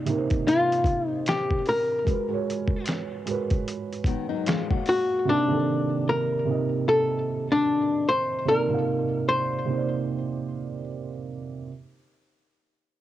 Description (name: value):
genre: lo-fi hip hop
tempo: 75 BPM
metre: 4/4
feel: swing 57% on 16ths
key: unclear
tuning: A4 = 441 Hz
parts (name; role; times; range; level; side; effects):
- archtop guitar, miked and amplified; melody; 0.0-10.8 s; D4 to C5; -24 LUFS; left 2 dB; low-pass filter, cassette tape
- felt-muted upright piano; accompaniment; 0.0-11.7 s; C3 to F5; -28 LUFS; right 5 dB; cassette tape, low-pass filter
- dusty soul sampler-style drum kit; drums; 0.1-5.1 s; finger snaps, hi-hat, kick drum, snare drum; -27 LUFS; equal; overdrive, cassette tape
- nylon-string guitar; second line; 4.1-5.2 s; Eb3 to Gb4; -30 LUFS; left 9 dB; low-pass filter, cassette tape, tape echo
room: light reverb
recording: home recording on cassette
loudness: -23 LUFS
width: side -13 dB against mid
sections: 0.0-11.7 A section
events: none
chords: 0.0 Cm9; 2.1 Abm9; 5.3 Cm9